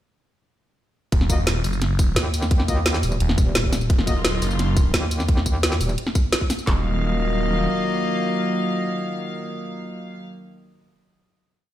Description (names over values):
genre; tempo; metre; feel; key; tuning
dark technical drum and bass; 173 BPM; 4/4; straight; Eb minor; A4 = 438 Hz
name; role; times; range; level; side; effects
phased detuned saw bass; bass; 1.1-7.7 s; Eb1 to Gb1; -22 LUFS; equal; phaser, overdrive, sidechain pumping
drum and bass drum kit; drums; 1.1-6.8 s; handclaps, kick drum, snare drum; -20 LUFS; equal; none
drum and bass drum kit; drums; 1.1-6.7 s; hi-hat, snare drum, tambourine; -24 LUFS; equal; none
mellow brass ensemble; stabs; 1.3-4.1, 6.7-10.2 s; Bb3 to Eb5; -28 LUFS; left 4 dB; dub echo
metallic wobble bass; bass; 2.2-6.0 s; Eb1 to Eb2; -22 LUFS; equal; chorus
warm studio string section; sustained chords; 3.9-10.2 s; Eb3 to F5; -27 LUFS; right 2 dB; sidechain pumping
room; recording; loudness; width
digital ambience; played on a big sound system in a bare room, stone room reverb; -19 LUFS; side -12 dB against mid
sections
1.1-6.7 drop; 6.7-9.4 final chord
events
drop 1.1-6.7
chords
1.1 Ebmadd9